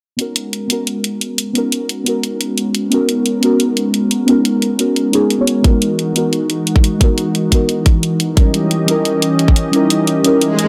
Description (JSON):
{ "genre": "liquid drum and bass", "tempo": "176 BPM", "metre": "4/4", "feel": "straight", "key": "G# minor", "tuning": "A4 = 440 Hz", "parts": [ { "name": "deep mellow chord stab", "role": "accompaniment", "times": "0.2-10.7 s", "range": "G3 to C#5", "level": "-19 LUFS", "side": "equal", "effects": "chorus, phaser, cassette tape, delay" }, { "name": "warm analog pad", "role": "sustained chords", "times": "0.2-10.7 s", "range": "E3 to D#5", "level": "-20 LUFS", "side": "equal", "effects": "chorus" }, { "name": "electronic hi-hat", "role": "drums", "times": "0.2-10.7 s", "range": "none", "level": "-21 LUFS", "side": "equal", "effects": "none" }, { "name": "electronic kick drum", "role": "drums", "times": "5.6-9.5 s", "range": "none", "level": "-13 LUFS", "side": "equal", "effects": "none" }, { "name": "swell", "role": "sound effects", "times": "10.5-10.7 s", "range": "none", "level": "-19 LUFS", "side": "equal", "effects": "none" } ], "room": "light reverb, digital ambience", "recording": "none", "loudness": "-15 LUFS", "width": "mono", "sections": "0.2-10.7 A section", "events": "filter sweep on synth stab 0.2-10.7; filter sweep on analog synth pad 0.2-10.7; kick drops out 9.7-10.7; swell 10.5", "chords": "0.2 G#m11; 5.6 Emaj9#11; 8.4 D#7b9" }